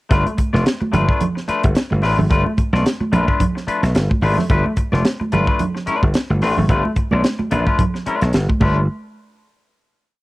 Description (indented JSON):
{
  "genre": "funk",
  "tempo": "109 BPM",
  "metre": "4/4",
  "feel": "swing 56% on 16ths",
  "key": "G mixolydian",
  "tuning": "A4 = 437 Hz",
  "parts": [
    { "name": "clean electric guitar", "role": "accompaniment", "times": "0.1-8.8 s", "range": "A3 to D5", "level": "-21 LUFS", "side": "left 3 dB", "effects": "cassette tape" },
    { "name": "slap bass", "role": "bass", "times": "0.1-8.9 s", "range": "F1 to B1", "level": "-18 LUFS", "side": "equal", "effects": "none" },
    { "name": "tight funk drum kit", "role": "drums", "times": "0.1-8.8 s", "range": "crash cymbal, hi-hat, kick drum, snare drum", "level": "-19 LUFS", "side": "equal", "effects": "none" },
    { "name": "congas", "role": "percussion", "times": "0.3-8.9 s", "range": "none", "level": "-23 LUFS", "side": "right 3 dB", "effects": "none" }
  ],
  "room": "light reverb",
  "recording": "home recording on cassette",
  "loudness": "-15 LUFS",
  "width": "side -19 dB against mid",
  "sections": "0.1-8.9 groove; 8.9-10.2 final hit",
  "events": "none",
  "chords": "0.1 G9; 8.9 N.C."
}